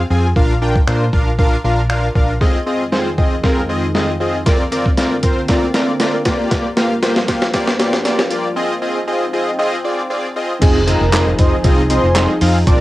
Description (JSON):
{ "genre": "dance-pop", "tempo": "117 BPM", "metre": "4/4", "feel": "straight", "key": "F dorian", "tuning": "A4 = 440 Hz", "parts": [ { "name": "vintage muted fingered electric bass", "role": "bass", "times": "0.0-2.4, 10.6-12.8 s", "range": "F1 to Bb2", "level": "-17 LUFS", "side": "equal", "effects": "sidechain pumping" }, { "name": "big bright polysynth", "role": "accompaniment", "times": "0.1-12.8 s", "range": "Bb3 to Ab5", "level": "-18 LUFS", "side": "equal", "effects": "chorus, cassette tape" }, { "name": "boom bap sampler-style drum kit", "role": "drums", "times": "0.4-12.8 s", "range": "crash cymbal, finger snaps, handclaps, hi-hat, kick drum, snare drum", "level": "-16 LUFS", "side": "equal", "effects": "cassette tape" }, { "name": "lush unison pad", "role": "sustained chords", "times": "2.8-12.8 s", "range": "F2 to Ab4", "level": "-24 LUFS", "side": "equal", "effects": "chorus, sidechain pumping, cassette tape" }, { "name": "airy dreamy lead", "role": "melody", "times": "10.6-12.8 s", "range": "Ab4 to D5", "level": "-20 LUFS", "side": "right 1 dB", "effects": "chorus, cassette tape" }, { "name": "impact", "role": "sound effects", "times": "10.7-12.7 s", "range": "none", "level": "-27 LUFS", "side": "equal", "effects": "none" } ], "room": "light reverb", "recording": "home recording on cassette, high-pass filter", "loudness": "-13 LUFS", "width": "side -16 dB against mid", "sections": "0.0-2.4 A section; 2.4-10.6 B section; 10.6-12.8 C section", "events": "build-up 2.4-10.6; drum fill 2.4-8.6; break 8.6-10.6; drop 10.6-12.8; impact 10.6-12.7", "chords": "0.4 Bb; 2.4 Fm7; 4.5 Bbadd9; 6.3 Gm7; 8.6 Ab6; 10.6 Fm7", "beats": "| 0.36 0.87 1.39 1.90 | 2.41 2.92 3.44 3.95 | 4.46 4.98 5.49 6.00 | 6.51 7.03 7.54 8.05 | 8.57 9.08 9.59 10.10 | 10.62 11.13 11.64 12.16 | 12.67" }